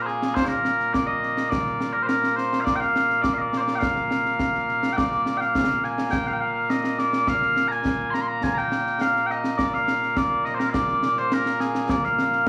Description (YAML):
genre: scottish traditional, Scottish pipe music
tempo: 104 BPM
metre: 4/4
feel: straight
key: Bb mixolydian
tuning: A4 = 440 Hz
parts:
  - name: mellow small bagpipes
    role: melody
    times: 0.0-12.5 s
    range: Bb2 to C6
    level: -24 LUFS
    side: equal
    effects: plate reverb, slapback echo
  - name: concert snare drum and concert bass drum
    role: drums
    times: 0.1-12.5 s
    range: none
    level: -30 LUFS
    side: equal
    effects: slapback echo
room: wet club reverb, RT60 0.8 s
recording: live gig heard through the venue's PA, club reverb, small room ambience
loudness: -23 LUFS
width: mono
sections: 0.0-12.5 A section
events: none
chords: none